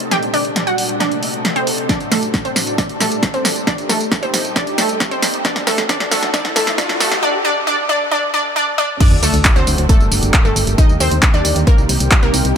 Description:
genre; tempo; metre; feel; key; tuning
uplifting trance; 135 BPM; 4/4; straight; G harmonic minor; A4 = 440 Hz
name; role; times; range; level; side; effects
analog string pad; sustained chords; 0.0-12.5 s; A2 to A4; -24 LUFS; equal; ensemble chorus, sidechain pumping
punchy analog drum machine; drums; 0.0-12.5 s; crash cymbal, handclaps, hi-hat, snare drum, tambourine; -18 LUFS; equal; overdrive, sidechain pumping on hats, small room ambience, sidechain pumping on perc, sidechain pumping on cymbals
wide unison pluck; melody; 0.1-12.4 s; A3 to G5; -18 LUFS; equal; lush chorus, sidechain pumping, dub echo
electronic kick drum; drums; 1.9-12.2 s; none; -14 LUFS; equal; small room ambience
riser and sub drop; sound effects; 3.8-10.8 s; none; -25 LUFS; equal; none
solid FM bass; bass; 9.1-12.5 s; G1 to Eb2; -18 LUFS; equal; sidechain pumping
room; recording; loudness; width
light reverb; high-pass filter; -13 LUFS; side -8 dB against mid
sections
0.0-9.0 A section; 9.0-12.6 B section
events
build-up 0.0-9.0; drum fill 0.0-7.2; filter sweep on synth pluck 0.0-9.0; riser 3.8-7.2; drop 9.0-12.6; impact 9.0-10.8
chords
0.1 Gmadd9; 1.0 Adim; 1.9 D; 2.8 Gmadd9; 3.7 Eb; 4.6 Cm; 5.4 D; 6.3 Adim; 7.2 N.C.; 9.0 D; 9.9 Gmadd9; 10.8 Eb; 11.7 Cm

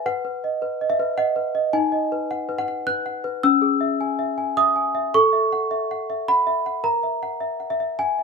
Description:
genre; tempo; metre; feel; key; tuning
classical, lullaby for celesta; 106 BPM; 3/4; rubato; unclear; A4 = 440 Hz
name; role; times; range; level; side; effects
worn celesta; solo; 0.0-8.2 s; C#4 to F#6; -20 LUFS; equal; none
room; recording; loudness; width
moderate large studio reverb, RT60 0.9 s; band playing live in one room; -20 LUFS; side -4 dB against mid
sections
0.0-8.2 A section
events
none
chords
0.0 B; 1.7 B/D#; 3.4 C#m; 5.1 F#m7/A; 6.8 F#7/A#

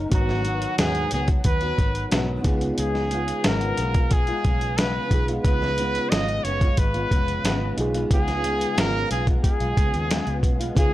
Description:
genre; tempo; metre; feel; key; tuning
indie pop, bedroom pop; 90 BPM; 4/4; straight; unclear; A4 = 439 Hz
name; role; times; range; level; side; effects
flamenco guitar; accompaniment; 0.0-10.9 s; G#2 to A#4; -29 LUFS; left 2 dB; ensemble chorus, warbly pitch drift
reed electric piano; accompaniment; 0.0-10.9 s; B3 to A#5; -32 LUFS; right 2 dB; cassette tape
vintage muted fingered electric bass; bass; 0.0-10.9 s; E#1 to D#2; -28 LUFS; equal; tube saturation
bright trumpet; melody; 0.1-10.9 s; F#4 to D#5; -27 LUFS; equal; wide subtle chorus
dusty soul sampler-style drum kit; drums; 0.1-10.9 s; hi-hat, kick drum, snare drum; -22 LUFS; equal; none
room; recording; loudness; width
little or no reverb; dry, gritty hardware recording; -20 LUFS; side -15 dB against mid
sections
0.0-10.8 A section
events
none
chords
0.1 G#m7; 2.4 C#7

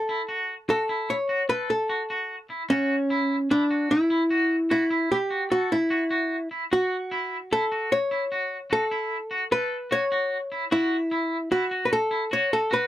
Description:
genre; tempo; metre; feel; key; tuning
progressive instrumental, progressive; 150 BPM; 5/4; straight; unclear; A4 = 440 Hz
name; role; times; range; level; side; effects
archtop guitar, miked and amplified; melody; 0.0-12.9 s; C#4 to C#5; -24 LUFS; equal; none
twangy electric guitar; arpeggios; 0.1-12.8 s; E4 to A4; -28 LUFS; equal; tremolo
room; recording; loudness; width
moderate booth ambience, RT60 0.2 s; dry, close 1970s-style studio recording; -23 LUFS; side -13 dB against mid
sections
0.0-12.9 A section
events
none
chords
0.0 F#m; 10.7 A5

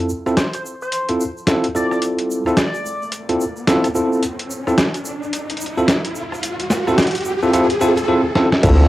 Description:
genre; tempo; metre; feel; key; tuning
glitch hop; 109 BPM; 4/4; swing 61% on 16ths; unclear; A4 = 440 Hz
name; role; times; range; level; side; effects
bell-like tine electric piano; stabs; 0.0-8.9 s; C4 to A4; -18 LUFS; equal; medium stereo tremolo, sidechain pumping, cassette tape, tape echo
riser and impact; sound effects; 1.8-8.9 s; none; -24 LUFS; equal; none
egg shaker; percussion; 0.1-8.8 s; none; -35 LUFS; right 2 dB; none
boom bap sampler-style drum kit; drums; 0.3-8.8 s; crash cymbal, hi-hat, rim click, snare drum; -19 LUFS; equal; cassette tape
sync lead; melody; 0.4-3.0 s; C5 to D5; -27 LUFS; left 1 dB; wide subtle chorus, cassette tape, tape echo
formant-sweep wobble bass; bass; 8.6-8.9 s; D2; -11 LUFS; equal; chorus, tube saturation
electronic kick drum; drums; 8.6-8.8 s; none; -16 LUFS; equal; cassette tape
room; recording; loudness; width
wet studio reverb, RT60 0.5 s; home recording on cassette; -16 LUFS; side -15 dB against mid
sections
0.0-8.6 A section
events
build-up 0.0-8.6; riser 1.8-8.1; drum fill 8.4; impact 8.6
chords
0.0 Cadd11

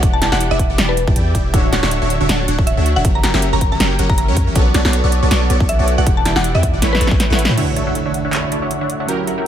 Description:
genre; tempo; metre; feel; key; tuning
future bass; 159 BPM; 4/4; swing 56% on 16ths, half-time; D major; A4 = 440 Hz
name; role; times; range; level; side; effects
mallet-like synth pluck; melody; 0.0-7.3 s; B4 to A#5; -22 LUFS; equal; chorus, sidechain pumping, tape echo
supersaw stab; riff; 0.0-9.5 s; D3 to B5; -19 LUFS; right 1 dB; vintage 12-bit sampler grit, sidechain pumping, low-pass filter
long sustained 808-style bass; bass; 0.0-7.6 s; D1 to A2; -17 LUFS; equal; sidechain pumping
big-room dance drum kit; drums; 0.0-9.4 s; crash cymbal, handclaps, hi-hat, snare drum; -20 LUFS; equal; none
electronic kick drum; drums; 0.0-7.2 s; none; -16 LUFS; equal; none
glassy digital keys; accompaniment; 7.6-9.5 s; D3 to C#5; -24 LUFS; right 6 dB; chorus, sidechain pumping, tape echo
airy breathy pad; sustained chords; 8.0-9.5 s; A3 to F#5; -31 LUFS; right 4 dB; none
impact; sound effects; 7.6-9.1 s; none; -26 LUFS; equal; none
room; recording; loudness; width
light reverb, digital ambience; none; -13 LUFS; side -10 dB against mid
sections
0.0-7.6 A section; 7.6-9.5 B section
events
drop 0.0-7.6; drum fill 6.8-7.6; kick drops out 7.2-7.6; impact 7.6-9.1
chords
0.0 Em7; 1.5 Dmaj7; 3.0 F#7b9; 4.6 Bm9; 6.1 Em7; 6.8 A9; 7.6 Dmaj7

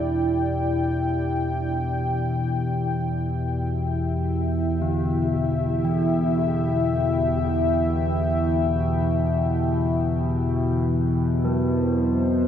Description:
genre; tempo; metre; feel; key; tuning
dark ambient drone; free time; none; none; E minor; A4 = 440 Hz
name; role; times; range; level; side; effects
dark analog pad; sustained chords; 0.0-12.5 s; E4 to G5; -25 LUFS; left 1 dB; chorus
bronze singing bowl; arpeggios; 0.0-12.5 s; D3 to E4; -32 LUFS; left 1 dB; tape echo
analog drone; drone; 0.0-12.5 s; E2 to B2; -23 LUFS; left 1 dB; chorus
room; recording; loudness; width
wet huge ambient reverb, RT60 8.8 s; dark, warm production; -21 LUFS; side -9 dB against mid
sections
0.0-12.5 A section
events
none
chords
0.0 Em; 10.6 N.C.

